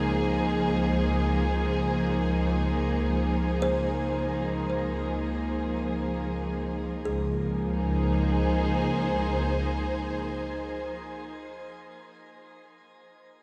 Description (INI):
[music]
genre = ambient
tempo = free time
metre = none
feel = none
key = Db major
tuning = A4 = 441 Hz
[part]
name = warm studio string section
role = sustained chords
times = 0.0-11.7 s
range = F3 to C5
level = -30 LUFS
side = equal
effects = none
[part]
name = kalimba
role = arpeggios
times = 0.0-11.0 s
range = F3 to C6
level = -40 LUFS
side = equal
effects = none
[part]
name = warm studio double bass section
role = bass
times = 0.0-10.2 s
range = Db2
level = -32 LUFS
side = equal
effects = none
[sound]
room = wet shimmer reverb, RT60 7.3 s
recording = cassette tape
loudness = -28 LUFS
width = mono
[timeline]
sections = 0.0-7.1 A section; 7.1-11.3 B section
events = none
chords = 0.0 Dbmaj7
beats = free time